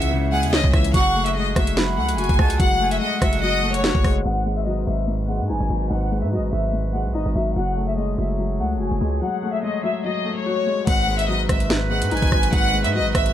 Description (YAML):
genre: hip hop, drill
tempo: 145 BPM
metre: 4/4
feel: half-time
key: G# phrygian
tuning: A4 = 440 Hz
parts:
  - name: clear studio violin section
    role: melody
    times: 0.0-13.3 s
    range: C#5 to G#5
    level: -24 LUFS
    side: left 2 dB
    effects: none
  - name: breathy jazz flute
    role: second line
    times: 0.0-4.2 s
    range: F#5 to C#6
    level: -28 LUFS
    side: right 5 dB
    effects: ping-pong delay
  - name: felt-muted upright piano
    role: accompaniment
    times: 0.0-13.3 s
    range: G#2 to C#5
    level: -25 LUFS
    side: left 3 dB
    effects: none
  - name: clear woodwind section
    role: sustained chords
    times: 0.0-13.3 s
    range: F#3 to F#5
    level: -33 LUFS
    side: right 3 dB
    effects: none
  - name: hard-hitting 808-style bass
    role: bass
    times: 0.0-13.3 s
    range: F#1 to G#2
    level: -24 LUFS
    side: equal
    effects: none
  - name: drill drum kit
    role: drums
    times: 0.0-4.1, 10.9-13.3 s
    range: crash cymbal, hi-hat, kick drum, rim click, snare drum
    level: -20 LUFS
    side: equal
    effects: none
room: light reverb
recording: low-pass filter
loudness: -18 LUFS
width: side -11 dB against mid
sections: 0.0-4.3 A section; 4.3-10.9 B section; 10.9-13.3 A section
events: filter sweep 4.3-10.9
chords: 0.0 C#m; 0.9 F#madd9; 4.3 G#m7; 7.6 F#madd9; 10.9 G#m7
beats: 0.11 0.53 | 0.94 1.35 1.77 2.18 | 2.60 3.01 3.42 3.84 | 4.25 4.67 5.08 5.49 | 5.91 6.32 6.74 7.15 | 7.56 7.98 8.39 8.80 | 9.22 9.63 10.04 10.46 | 10.87 11.29 11.70 12.11 | 12.53 12.94